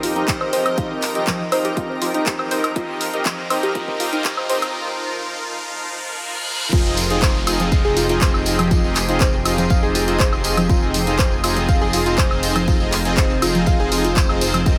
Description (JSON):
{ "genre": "progressive house", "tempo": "121 BPM", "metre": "4/4", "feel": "straight", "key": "F minor", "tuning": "A4 = 440 Hz", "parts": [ { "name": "shimmering ambient pad", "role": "sustained chords", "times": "0.0-14.8 s", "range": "F2 to Bb4", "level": "-29 LUFS", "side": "equal", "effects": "chorus, built-in reverb, sidechain pumping" }, { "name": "soft round pluck", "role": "arpeggios", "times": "0.0-14.8 s", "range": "F3 to F5", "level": "-26 LUFS", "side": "equal", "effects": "chorus, sidechain pumping, digital delay" }, { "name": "soft supersaw", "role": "stabs", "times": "0.0-14.8 s", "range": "C4 to Eb5", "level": "-26 LUFS", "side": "equal", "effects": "sidechain pumping, digital delay" }, { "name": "pop drum kit", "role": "drums", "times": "0.0-14.8 s", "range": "crash cymbal, handclaps, hi-hat, woodblock", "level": "-27 LUFS", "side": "equal", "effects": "none" }, { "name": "riser, reverse cymbal and downlifter", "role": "sound effects", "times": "2.0-10.7 s", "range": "none", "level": "-32 LUFS", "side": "equal", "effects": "none" }, { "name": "backwards swelling texture", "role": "texture", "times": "0.0-14.8 s", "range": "C4 to Eb5", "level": "-38 LUFS", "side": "equal", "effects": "none" }, { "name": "electronic kick drum", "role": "drums", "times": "0.3-14.8 s", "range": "none", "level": "-21 LUFS", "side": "equal", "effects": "none" }, { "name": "dark detuned saw bass", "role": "bass", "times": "6.7-14.8 s", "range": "F1", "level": "-27 LUFS", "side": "equal", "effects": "sidechain pumping" }, { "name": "tambourine", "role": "percussion", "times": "6.7-14.8 s", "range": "none", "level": "-31 LUFS", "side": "equal", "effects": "none" } ], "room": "light reverb", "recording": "high-pass filter", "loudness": "-19 LUFS", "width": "mono", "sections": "0.0-6.7 A section; 6.7-14.8 B section", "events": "build-up 0.0-6.7; filter sweep on supersaw synth 0.0-6.7; filter sweep 0.0-6.7; riser 2.0-6.7; reverse cymbal 5.7-6.7; drop 6.7-14.8", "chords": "0.0 Cm7/F; 6.7 Fm7" }